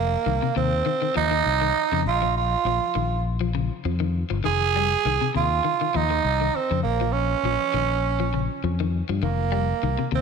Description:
afrobeat; 100 BPM; 4/4; swing 54% on 16ths; F minor; A4 = 438 Hz
growling tenor saxophone; melody; 0.0-10.2 s; Bb3 to Ab4; -23 LUFS; right 8 dB
fingered electric bass; bass; 0.0-10.2 s; F1 to G2; -25 LUFS; left 2 dB
electric guitar at the edge of break-up; arpeggios; 0.3-10.2 s; C3 to G3; -29 LUFS; left 12 dB; harmonic tremolo
moderate echo chamber reverb, RT60 2.5 s; 1960s-style stereo with parts hard left and right; -21 LUFS; side -6 dB against mid
0.0-10.2 A section
0.0 F7sus4; 2.1 Bb5; 4.4 Fm7; 6.8 Bbm; 9.2 F9sus4
0.27 0.86 1.46 | 2.06 2.65 3.25 3.85 | 4.45 5.04 5.64 6.24 | 6.84 7.44 8.03 8.63 | 9.23 9.83

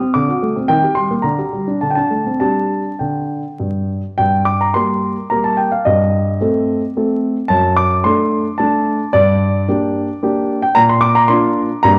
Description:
classical-period piano sonatina; 109 BPM; 3/4; rubato; G minor; A4 = 439 Hz
warm grand piano; solo; 0.0-12.0 s; F#2 to Eb6; -16 LUFS; equal
moderate recital hall reverb, RT60 1.5 s; worn, warbling old tape, cassette tape, vinyl crackle, warbly pitch drift; -16 LUFS; mono
0.0-4.2 A section; 4.2-12.0 A section
0.2 D7; 0.7 Eb; 1.3 Gm/D; 1.8 D5; 2.4 G5; 4.2 Gm; 5.9 Am7b5/G; 7.5 D7/F#; 9.1 Gm; 10.8 Bb
0.16 | 0.70 1.26 1.82 | 2.41 3.01 3.60 | 4.17 4.74 5.30 | 5.85 6.41 6.96 | 7.50 8.05 8.59 | 9.13 9.68 10.22 | 10.76 11.29 11.83

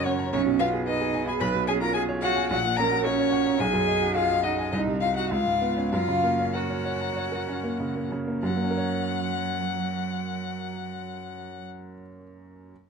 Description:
quick classical-period movement for piano trio; 94-112 BPM; 4/4; rubato; F# major; A4 = 440 Hz
rich violin; melody; 0.0-11.6 s; C#5 to B5; -29 LUFS; left 11 dB
clear baby grand piano; accompaniment; 0.0-12.7 s; A#1 to B5; -28 LUFS; right 1 dB
clear cello; second line; 0.1-11.6 s; F#3 to B4; -29 LUFS; right 8 dB
light reverb; dark, warm production; -23 LUFS; side -5 dB against mid
0.0-8.4 A section; 8.4-10.9 B section
slowing down 2.5-8.4
0.3 G#m/B; 1.4 C#7/B; 2.5 F#/A#; 3.6 G#m7/B; 4.7 Cdim; 5.3 C#7; 5.9 F#
0.32 0.87 | 1.41 1.95 2.50 3.05 | 3.60 4.16 4.72 5.31 | 5.92 6.55 7.17 7.80 | 8.43 9.04 9.65 10.27

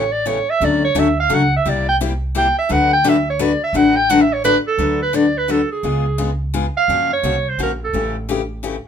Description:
acoustic string swing (jazz manouche); 172 BPM; 3/4; swing 61% on 8ths; D major; A4 = 440 Hz
clear clarinet; melody; 0.0-8.2 s; G#4 to G5; -17 LUFS; right 2 dB
picked steel-string acoustic guitar; accompaniment; 0.0-8.8 s; C3 to B4; -18 LUFS; left 4 dB
upright bass; bass; 0.0-8.8 s; A1 to F#2; -23 LUFS; right 1 dB
moderate studio reverb, RT60 0.6 s; minimal, uncompressed stereo recording; -15 LUFS; side -8 dB against mid
0.0-4.8 A section; 4.8-8.9 B section
clarinet solo 0.0-4.8
0.0 A7; 0.6 Dmaj7; 1.7 C7; 2.7 D6; 5.8 C#7; 6.9 F#maj7; 7.9 A7
0.27 | 0.61 0.96 1.31 | 1.66 2.01 2.35 | 2.70 3.05 3.40 | 3.75 4.10 4.45 | 4.79 5.14 5.49 | 5.84 6.19 6.54 | 6.89 7.24 7.59 | 7.94 8.29 8.64

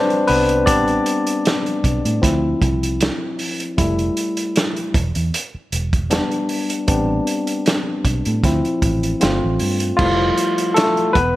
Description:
lush 1970s-style soul; 77 BPM; 4/4; swing 54% on 16ths; A minor; A4 = 441 Hz
barky tine electric piano; accompaniment; 0.0-11.4 s; F3 to D5; -18 LUFS; left 1 dB; overdrive
vintage drum kit; drums; 0.1-11.3 s; crash cymbal, hi-hat, kick drum, snare drum; -21 LUFS; right 1 dB
vintage muted fingered electric bass; bass; 0.3-11.3 s; E1 to A2; -21 LUFS; right 1 dB
light reverb, small room ambience; -16 LUFS; side -16 dB against mid
0.0-10.0 A section; 10.0-11.4 A section
tine electric piano solo 0.0-10.0, 10.0-11.4
0.0 Em7 (rootless); 0.7 Am11; 2.2 Dm9; 3.8 Fmaj9; 4.9 Em7; 6.9 Am11; 8.4 Dm9; 9.2 G9sus4; 10.0 Fmaj9
| 0.67 1.45 2.22 3.00 | 3.78 4.55 5.33 6.11 | 6.88 7.66 8.44 9.21 | 9.99 10.77

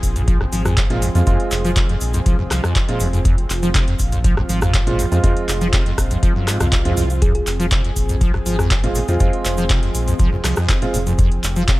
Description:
acid house; 121 BPM; 4/4; straight; F minor; A4 = 440 Hz
lush unison pad; sustained chords; 0.0-11.8 s; F3 to Ab4; -28 LUFS; equal; chorus, sidechain pumping
round analog bass; bass; 0.0-11.8 s; F1 to F2; -22 LUFS; equal; sidechain pumping
booming analog drum machine; drums; 0.0-11.8 s; handclaps, hi-hat, rim click; -24 LUFS; equal
electronic kick drum; drums; 0.0-11.8 s; -18 LUFS; equal
cabasa; percussion; 0.0-11.8 s; -33 LUFS; right 3 dB
liquid acid bass; riff; 0.2-11.8 s; Eb2 to F3; -22 LUFS; equal; overdrive, lush chorus, sidechain pumping
warm concert grand piano; stabs; 0.9-11.0 s; Ab3 to F4; -25 LUFS; right 3 dB; tape echo
swell; sound effects; 6.4-7.2 s; -30 LUFS; right 2 dB
thumb-piano-like synth pluck; melody; 7.2-7.4 s; Ab4; -29 LUFS; equal; chorus, tape echo
little or no reverb; -15 LUFS; side -18 dB against mid
0.0-11.8 A section
swell 6.4-7.2
0.0 Fm
0.28 0.77 | 1.27 1.76 2.26 2.76 | 3.25 3.75 4.24 4.74 | 5.24 5.73 6.23 6.72 | 7.22 7.72 8.21 8.71 | 9.20 9.70 10.20 10.69 | 11.19 11.68

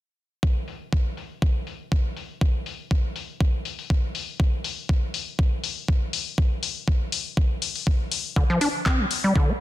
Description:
acid house; 121 BPM; 4/4; swing 54% on 16ths; D minor pentatonic; A4 = 439 Hz
electronic kick drum; drums; 0.4-9.5 s; -23 LUFS; equal; overdrive
punchy analog drum machine; drums; 0.7-9.2 s; handclaps, hi-hat; -28 LUFS; left 6 dB; low-pass filter on hats, low-pass filter on snare
acid bass, square; riff; 8.4-9.5 s; D3 to D4; -23 LUFS; equal; tube saturation, vintage 12-bit sampler grit, sidechain pumping, tape echo
little or no reverb; dense, heavily limited modern master; -22 LUFS; side -15 dB against mid
0.4-9.6 A section
| 0.43 0.93 1.42 1.92 | 2.41 2.91 3.40 3.90 | 4.40 4.89 5.39 5.88 | 6.38 6.88 7.37 7.87 | 8.36 8.86 9.36

